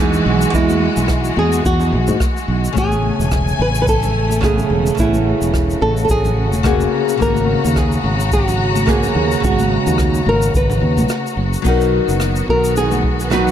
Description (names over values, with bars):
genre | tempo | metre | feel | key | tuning
sunset chillout | 108 BPM | 4/4 | swing 56% on 16ths | unclear | A4 = 440 Hz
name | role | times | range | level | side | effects
flamenco guitar | melody | 0.0-13.5 s | E4 to B4 | -20 LUFS | equal | digital delay
nylon-string guitar | accompaniment | 0.0-13.5 s | C#3 to G#5 | -20 LUFS | moving between left 9 dB and right 8 dB | auto-pan, digital delay
rich studio string section | sustained chords | 0.0-13.5 s | C#3 to A#5 | -22 LUFS | left 2 dB | none
fretless electric bass | bass | 0.0-13.5 s | E1 to G#2 | -18 LUFS | equal | lush chorus
jazz brush drum kit | drums | 0.1-13.5 s | crash cymbal, rim click, shaker | -29 LUFS | equal | none
congas | percussion | 0.1-13.5 s | none | -27 LUFS | left 4 dB | none
electronic kick drum | drums | 0.5-13.2 s | none | -20 LUFS | equal | none
room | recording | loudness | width
light reverb, small room ambience | dark, warm production | -14 LUFS | side -10 dB against mid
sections
0.0-11.6 A section; 11.6-13.5 A section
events
break 11.1-11.6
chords
0.0 Emaj9; 2.8 Amaj9; 6.9 G#m11; 11.6 Bmaj7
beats
| 0.54 1.09 1.65 2.20 | 2.76 3.31 3.87 4.42 | 4.98 5.54 6.09 6.65 | 7.20 7.76 8.31 8.87 | 9.42 9.98 10.54 11.09 | 11.65 12.20 12.76 13.31